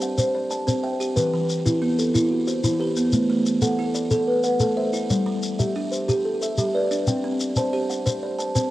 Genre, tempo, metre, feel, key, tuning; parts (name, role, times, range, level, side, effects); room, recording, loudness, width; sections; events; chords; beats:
southern african traditional, mbira-style interlocking cycle; 122 BPM (dotted quarters); 12/8; straight; A dorian; A4 = 439 Hz
buzzing kalimba; arpeggios; 0.0-8.7 s; E3 to A5; -24 LUFS; right 2 dB; cassette tape, analog delay
kalimba; arpeggios; 0.0-8.7 s; E3 to G5; -24 LUFS; left 1 dB; cassette tape, analog delay
shekere; percussion; 0.0-8.7 s; -24 LUFS; left 1 dB
light reverb; home recording on cassette; -20 LUFS; side -15 dB against mid
0.0-8.7 A section
0.0 C; 1.2 Em; 3.1 Am; 5.1 G; 7.1 C5
0.18 0.67 | 1.16 1.66 2.15 2.64 | 3.13 3.62 4.12 4.61 | 5.10 5.59 6.08 6.58 | 7.07 7.56 8.05 8.54